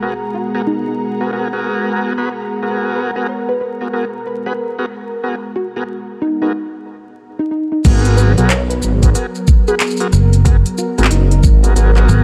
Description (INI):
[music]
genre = glitch hop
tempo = 92 BPM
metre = 4/4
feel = swing 62% on 16ths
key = G# minor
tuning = A4 = 440 Hz
[part]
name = warm analog pad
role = sustained chords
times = 0.0-12.2 s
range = F#3 to A#4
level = -25 LUFS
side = equal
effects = chorus, sidechain pumping
[part]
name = tonewheel organ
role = stabs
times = 0.0-12.2 s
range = B3 to B4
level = -24 LUFS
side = equal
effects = overdrive, slow rotary speaker, sidechain pumping, delay
[part]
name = ethereal airy pad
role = texture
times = 0.0-6.5 s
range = B3 to A#5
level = -29 LUFS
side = equal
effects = ensemble chorus, built-in reverb, tremolo, sidechain pumping
[part]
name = woody wave-folded pluck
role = melody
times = 0.3-11.4 s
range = D#4 to C#5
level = -24 LUFS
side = equal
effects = ensemble chorus, delay
[part]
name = phased detuned saw bass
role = bass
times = 7.8-12.1 s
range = F#1 to B1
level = -14 LUFS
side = equal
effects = phaser, overdrive
[part]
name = electronic kick drum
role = drums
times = 7.8-11.6 s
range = none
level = -13 LUFS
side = equal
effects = none
[part]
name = pop drum kit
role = drums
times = 7.8-12.2 s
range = crash cymbal, handclaps, hi-hat, rim click, shaker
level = -24 LUFS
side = equal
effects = none
[part]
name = fingered electric bass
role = bass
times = 10.1-12.2 s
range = F#1 to G#1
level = -12 LUFS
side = equal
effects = tube saturation
[sound]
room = light reverb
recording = vinyl crackle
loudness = -15 LUFS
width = mono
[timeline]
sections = 0.0-7.8 A section; 7.8-12.2 B section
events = filter sweep on analog synth pad 0.0-7.8; drop 7.8-12.2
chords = 0.0 G#m9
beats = | 0.02 0.67 1.33 1.98 | 2.63 3.28 3.94 4.59 | 5.24 5.89 6.54 7.20 | 7.85 8.50 9.15 9.80 | 10.46 11.11 11.76